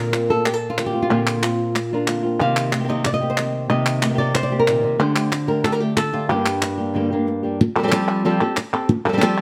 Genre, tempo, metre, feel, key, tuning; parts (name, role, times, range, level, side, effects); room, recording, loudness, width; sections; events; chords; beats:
flamenco; 185 BPM; 4/4; straight; A4 = 439 Hz
flamenco guitar; melody; 0.0-9.4 s; G2 to F5; -22 LUFS; equal
flamenco guitar; stabs; 0.0-7.6 s; G2 to G4; -27 LUFS; equal
palmas hand claps; percussion; 0.1-9.4 s; -27 LUFS; equal
moderate stone room reverb, RT60 1.0 s; -20 LUFS; mono
0.0-7.6 A section; 7.6-9.4 B section
0.0 Bbadd9; 2.4 Cm7; 5.0 Dsus4; 6.3 Gm; 7.6 Fadd9
0.14 0.46 0.78 | 1.11 1.43 1.75 2.08 | 2.40 2.73 3.05 3.38 | 3.70 4.03 4.35 4.67 | 5.00 5.33 5.65 5.97 | 6.30 6.62 6.95 7.27 | 7.60 7.92 8.24 8.57 | 8.89 9.21